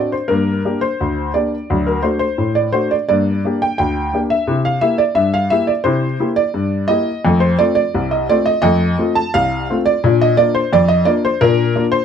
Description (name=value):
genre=ragtime piano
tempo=86 BPM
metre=2/4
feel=straight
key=Bb major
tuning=A4 = 441 Hz
part: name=warm upright piano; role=solo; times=0.0-12.0 s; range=C2 to A5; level=-14 LUFS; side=equal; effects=none
room=light reverb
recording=close, detailed microphones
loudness=-14 LUFS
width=side -8 dB against mid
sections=0.0-12.0 A section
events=none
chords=0.3 Gm; 1.7 D; 3.1 Gm; 4.5 C7; 7.3 F; 10.0 Bb